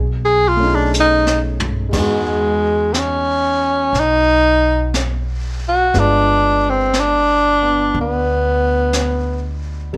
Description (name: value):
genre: jazz ballad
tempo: 60 BPM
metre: 4/4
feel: swing 69% on 8ths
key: unclear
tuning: A4 = 439 Hz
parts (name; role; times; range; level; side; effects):
- warm grand piano; accompaniment; 0.0-10.0 s; G3 to B4; -28 LUFS; equal; none
- upright bass; bass; 0.0-10.0 s; G1 to E2; -23 LUFS; equal; none
- breathy tenor saxophone; melody; 0.3-9.6 s; G3 to G#4; -17 LUFS; equal; none
- jazz brush drum kit; drums; 0.9-10.0 s; brushed snare drum, crash cymbal, hi-hat, kick drum, snare drum, toms; -27 LUFS; equal; none
room: light reverb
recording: none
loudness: -16 LUFS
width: mono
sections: 0.0-1.9 A section; 1.9-10.0 B section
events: tenor saxophone solo 0.0-1.9; drum fill 0.9-1.9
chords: 0.0 B13; 1.9 Emaj9; 5.9 G7b9